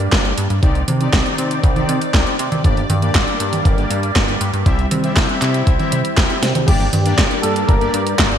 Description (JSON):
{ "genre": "italo disco", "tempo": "119 BPM", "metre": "4/4", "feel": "straight", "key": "G minor", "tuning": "A4 = 440 Hz", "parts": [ { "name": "lush unison pad", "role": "sustained chords", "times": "0.0-8.4 s", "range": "Eb3 to D5", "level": "-23 LUFS", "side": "equal", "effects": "chorus, phaser" }, { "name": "chorused synth bass", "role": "bass", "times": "0.0-8.4 s", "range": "G1 to C3", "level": "-21 LUFS", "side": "equal", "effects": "none" }, { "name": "house drum kit", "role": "drums", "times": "0.0-8.4 s", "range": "congas, crash cymbal, handclaps, hi-hat, snare drum", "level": "-20 LUFS", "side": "right 1 dB", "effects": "gated reverb" }, { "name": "analog synth brass", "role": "stabs", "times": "0.1-8.4 s", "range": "Bb3 to E5", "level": "-24 LUFS", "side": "left 3 dB", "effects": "chorus, ping-pong delay" }, { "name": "electronic kick drum", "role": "drums", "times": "0.1-8.3 s", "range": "none", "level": "-16 LUFS", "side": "equal", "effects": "overdrive" }, { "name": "dark baby grand piano", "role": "melody", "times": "6.7-8.4 s", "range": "G4 to Bb4", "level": "-22 LUFS", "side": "right 1 dB", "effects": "ensemble chorus, ping-pong delay" } ], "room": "light reverb", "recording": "bright 1980s-style digital production", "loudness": "-14 LUFS", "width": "side -9 dB against mid", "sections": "0.0-6.7 A section; 6.7-8.4 B section", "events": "drum fill 6.4", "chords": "0.0 Gm; 0.6 Cmadd9; 2.6 Gm; 4.7 C; 6.7 Gm", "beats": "0.12 | 0.63 1.13 1.64 2.14 | 2.64 3.15 3.65 4.16 | 4.66 5.17 5.67 6.17 | 6.68 7.18 7.69 8.19" }